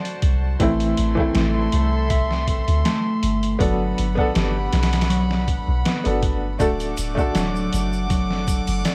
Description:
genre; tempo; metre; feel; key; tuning
trip hop; 80 BPM; 4/4; swing 53% on 16ths; A dorian; A4 = 439 Hz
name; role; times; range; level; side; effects
clear upright piano; accompaniment; 0.0-8.9 s; E3 to F#5; -28 LUFS; equal; tremolo, tape echo
warm studio violin section; sustained chords; 0.0-8.9 s; F#4 to D6; -32 LUFS; equal; vintage 12-bit sampler grit
mellow electric guitar; arpeggios; 0.0-8.9 s; F#3 to E5; -28 LUFS; equal; tape echo
trip hop sampler-style drum kit; drums; 0.1-8.9 s; hi-hat, kick drum, snare drum; -26 LUFS; equal; studio reverb
soft 808-style bass; bass; 0.2-8.8 s; D1 to D2; -25 LUFS; equal; none
tube shaker and triangle; percussion; 6.6-8.9 s; none; -40 LUFS; equal; none
room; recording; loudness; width
studio ambience; vinyl crackle; -21 LUFS; mono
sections
0.0-8.9 A section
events
none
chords
0.0 D; 0.6 Am; 3.6 Gmaj7; 6.6 D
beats
| 0.60 1.35 2.10 2.85 | 3.60 4.35 5.10 5.85 | 6.60 7.35 8.10 8.85

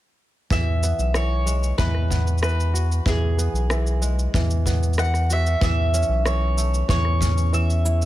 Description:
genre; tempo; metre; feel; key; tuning
folktronica; 94 BPM; 4/4; straight; E major; A4 = 441 Hz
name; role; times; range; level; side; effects
mandolin; melody; 0.5-8.1 s; G#4 to F#5; -27 LUFS; right 1 dB; digital delay
kora; arpeggios; 0.5-8.1 s; E3 to F#4; -29 LUFS; equal; vintage 12-bit sampler grit, digital delay
round analog bass; bass; 0.5-8.1 s; B1 to E2; -21 LUFS; equal; none
electronic shaker and rim click; drums; 0.5-8.1 s; none; -30 LUFS; equal; none
kick drum; drums; 0.5-7.3 s; none; -25 LUFS; equal; none
room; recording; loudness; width
studio reverb; none; -19 LUFS; side -15 dB against mid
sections
0.5-8.1 A section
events
none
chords
0.5 Eadd9; 5.6 Aadd9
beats
| 0.51 1.15 1.79 2.42 | 3.06 3.70 4.34 4.98 | 5.62 6.25 6.89 7.53

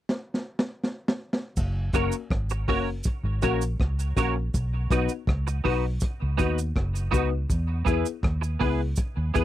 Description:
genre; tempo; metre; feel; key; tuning
roots reggae; 81 BPM; 4/4; straight; F# major; A4 = 439 Hz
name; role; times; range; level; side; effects
crunchy breakbeat drum kit; drums; 0.1-9.4 s; crash cymbal, hi-hat, kick drum, rim click, snare drum; -26 LUFS; equal; none
vintage muted fingered electric bass; bass; 1.6-9.4 s; F#1 to E2; -27 LUFS; equal; none
cabasa; percussion; 1.6-9.4 s; none; -40 LUFS; right 8 dB; none
semi-hollow electric guitar; accompaniment; 1.9-9.4 s; B3 to C#5; -30 LUFS; right 8 dB; ensemble chorus, tape echo
dark upright piano; stabs; 1.9-9.4 s; A#3 to B4; -29 LUFS; left 10 dB; none
room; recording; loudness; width
little or no reverb; dry, close 1970s-style studio recording; -24 LUFS; side -13 dB against mid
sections
0.0-1.6 A section; 1.6-9.4 B section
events
drum fill 0.1-1.6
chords
0.0 N.C.; 1.6 F#; 4.5 B; 7.5 E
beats
0.09 0.83 | 1.57 2.31 3.05 3.79 | 4.54 5.28 6.02 6.76 | 7.50 8.24 8.98

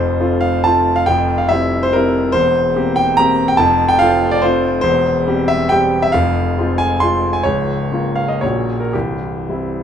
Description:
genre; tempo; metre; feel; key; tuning
classical, romantic triple-time dance for piano with dotted rhythms; 108-153 BPM; 3/4; rubato; F major, F minor from 4.8 s; A4 = 440 Hz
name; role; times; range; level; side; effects
clear grand piano; solo; 0.0-9.8 s; C1 to C6; -13 LUFS; equal; none
room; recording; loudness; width
moderate recital hall reverb, RT60 1.7 s; minimal, uncompressed stereo recording; -13 LUFS; side -8 dB against mid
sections
0.0-9.8 A section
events
none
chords
0.0 F; 1.1 C/F; 2.3 C7/E; 3.6 F; 4.8 C/E; 6.1 Fm; 7.5 Db6; 8.4 Gb/Bb; 8.9 C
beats
0.20 0.65 | 1.08 1.51 1.94 | 2.34 2.76 3.18 | 3.58 4.00 4.43 | 4.83 5.27 5.71 | 6.14 6.58 7.02 | 7.45 7.92 8.43 | 8.94 9.49

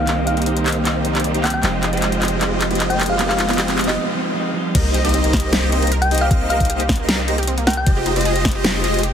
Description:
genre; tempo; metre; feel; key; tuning
future bass; 154 BPM; 4/4; half-time; C minor; A4 = 440 Hz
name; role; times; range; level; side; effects
thumb-piano-like synth pluck; melody; 0.0-7.9 s; Eb5 to G5; -25 LUFS; left 1 dB; chorus, sidechain pumping, digital delay
clean electric guitar; accompaniment; 0.0-4.7 s; Eb3 to G4; -25 LUFS; right 3 dB; spring reverb, sidechain pumping, digital delay
supersaw chords; riff; 0.0-9.0 s; Ab3 to F5; -22 LUFS; equal; phaser, sidechain pumping, low-pass filter
long sustained 808-style bass; bass; 0.0-9.1 s; F1 to C2; -23 LUFS; equal; sidechain pumping
riser and sub drop; sound effects; 1.1-6.3 s; none; -29 LUFS; equal; none
dubstep drum kit; drums; 0.1-9.1 s; crash cymbal, handclaps, hi-hat, snare drum; -22 LUFS; left 1 dB; none
airy dreamy lead; arpeggios; 4.7-9.0 s; Eb5; -27 LUFS; left 2 dB; chorus, sidechain pumping
wide unison pluck; arpeggios; 4.7-9.1 s; Bb3 to Bb4; -28 LUFS; right 3 dB; sidechain pumping, digital delay
electronic kick drum; drums; 4.7-8.5 s; none; -19 LUFS; equal; none
room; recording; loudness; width
moderate shimmer reverb, RT60 5.5 s; heavily compressed radio sound; -16 LUFS; side -8 dB against mid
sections
0.0-4.8 A section; 4.8-9.1 B section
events
build-up 0.0-4.8; drum fill 0.0-4.0; filter sweep on supersaw synth 0.0-4.8; filter sweep on synth pluck 0.0-4.8; break 4.0-4.8; drop 4.8-9.1; impact 4.8-6.3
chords
0.0 Cm7; 1.6 Fm9; 4.6 Cm; 4.8 Cm7; 7.9 Fm9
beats
| 0.07 0.46 0.85 1.24 | 1.63 2.02 2.41 2.80 | 3.19 3.58 3.97 4.36 | 4.75 5.14 5.53 5.92 | 6.31 6.70 7.09 7.48 | 7.87 8.26 8.65 9.04

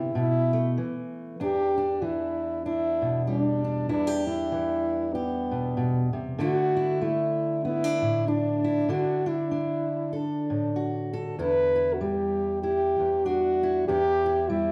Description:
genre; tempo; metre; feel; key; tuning
acoustic folk duo or small band; 96 BPM; 4/4; swing 59% on 8ths; E minor; A4 = 442 Hz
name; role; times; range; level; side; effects
mellow French horn; melody; 0.0-14.7 s; B3 to B4; -28 LUFS; equal; none
fingerpicked steel-string acoustic guitar; accompaniment; 0.0-14.7 s; E2 to A4; -31 LUFS; equal; none
room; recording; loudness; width
wet large studio reverb, RT60 0.8 s; band playing live in one room; -26 LUFS; mono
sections
0.0-1.4 A section; 1.4-14.7 B section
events
French horn solo 0.0-1.4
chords
0.1 B7sus4; 1.4 Em7; 6.4 Dadd9; 11.4 Em7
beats
0.14 0.77 | 1.39 2.02 2.65 3.27 | 3.90 4.52 5.14 5.77 | 6.39 7.02 7.64 8.26 | 8.89 9.51 10.13 10.75 | 11.38 12.00 12.62 13.24 | 13.87 14.49

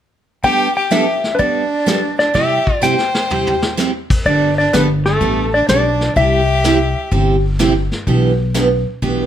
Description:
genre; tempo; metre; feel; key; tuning
country, western swing; 126 BPM; 4/4; swing 68% on 8ths; G major; A4 = 439 Hz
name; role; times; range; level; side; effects
clean lap steel guitar; melody; 0.4-7.1 s; A4 to G5; -17 LUFS; left 2 dB; plate reverb
bright fiddle; second line; 0.4-7.1 s; A3 to C5; -21 LUFS; right 1 dB; none
picked steel-string acoustic guitar; accompaniment; 0.4-9.3 s; B2 to A4; -18 LUFS; right 3 dB; none
vintage brush drum kit; drums; 0.4-9.3 s; brushed snare drum, crash cymbal, hi-hat, kick drum, snare drum, toms; -20 LUFS; left 1 dB; none
upright bass; bass; 4.3-9.3 s; G1 to C2; -17 LUFS; left 1 dB; none
room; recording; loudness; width
moderate studio reverb, RT60 0.7 s; none; -13 LUFS; side -10 dB against mid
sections
0.4-4.3 A section; 4.3-9.3 B section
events
drum fill 2.8-3.8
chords
0.4 Gadd9; 2.3 C; 4.3 Gadd9; 6.2 C; 8.1 G6/B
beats
| 0.44 0.92 1.39 1.87 | 2.35 2.83 3.30 3.78 | 4.26 4.73 5.21 5.69 | 6.16 6.64 7.12 7.59 | 8.07 8.55 9.03

